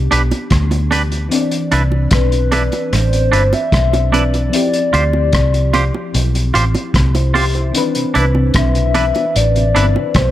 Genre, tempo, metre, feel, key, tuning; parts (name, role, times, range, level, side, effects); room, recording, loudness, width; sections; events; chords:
lovers rock reggae; 75 BPM; 4/4; straight; C major; A4 = 440 Hz
FM electric piano with soft pad layer; accompaniment; 0.0-10.3 s; Eb3 to E5; -21 LUFS; left 2 dB; chorus, phaser
vintage muted fingered electric bass; bass; 0.0-10.3 s; G1 to D2; -15 LUFS; equal
twangy electric guitar; stabs; 0.1-9.9 s; D4 to C5; -19 LUFS; right 4 dB
vintage drum kit; drums; 0.1-10.3 s; hi-hat, kick drum, rim click; -19 LUFS; equal
bongos; percussion; 0.3-10.1 s; -26 LUFS; right 4 dB; tape echo
hollow clarinet-like synth lead; melody; 2.1-10.3 s; B4 to E5; -18 LUFS; left 3 dB; chorus, phaser, tape echo
mellow tonewheel organ; accompaniment; 8.0-10.1 s; C3 to D4; -27 LUFS; left 3 dB
light reverb, small room ambience; -12 LUFS; side -13 dB against mid
0.0-10.3 A section
0.0 Em7; 1.3 Cmaj9; 4.5 Dm11; 7.7 Cmaj9